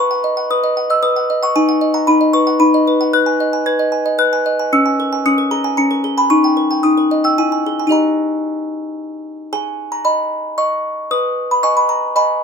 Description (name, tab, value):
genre	classical, lullaby for music box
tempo	113 BPM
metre	3/4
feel	straight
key	B major, G# minor from 3.1 s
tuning	A4 = 440 Hz
part	music box	solo	0.0-12.4 s	C#4 to G#6	-13 LUFS	equal	none
room	light reverb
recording	minimal, uncompressed stereo recording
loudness	-13 LUFS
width	side -6 dB against mid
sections	0.0-9.5 A section; 9.5-12.4 B section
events	none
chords	0.0 B; 1.6 B/D#; 3.1 G#m/B; 4.7 A#m7b5/C#; 6.3 D#; 7.4 E; 7.9 D#; 9.5 G#m; 11.1 G#m/B